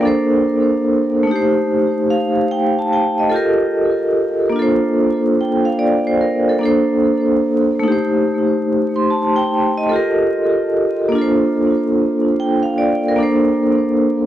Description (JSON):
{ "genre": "hip hop", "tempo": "73 BPM", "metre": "4/4", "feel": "swing 65% on 16ths", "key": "unclear", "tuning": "A4 = 440 Hz", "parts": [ { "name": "vibraphone with medium hard mallets", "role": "solo", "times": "0.0-14.3 s", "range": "A3 to C6", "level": "-14 LUFS", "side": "equal", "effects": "low-pass filter, tape echo" } ], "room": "light reverb", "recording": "dry, gritty hardware recording, transformer saturation, vinyl crackle", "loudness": "-14 LUFS", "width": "side -12 dB against mid", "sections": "0.0-14.3 A section", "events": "none", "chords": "0.0 Bbmaj9; 1.3 Am7b5; 3.3 Gm9; 4.6 C13sus4; 6.6 Bbmaj9; 7.8 Am7b5; 9.9 Gm9; 11.1 C13sus4; 13.2 Bbmaj9" }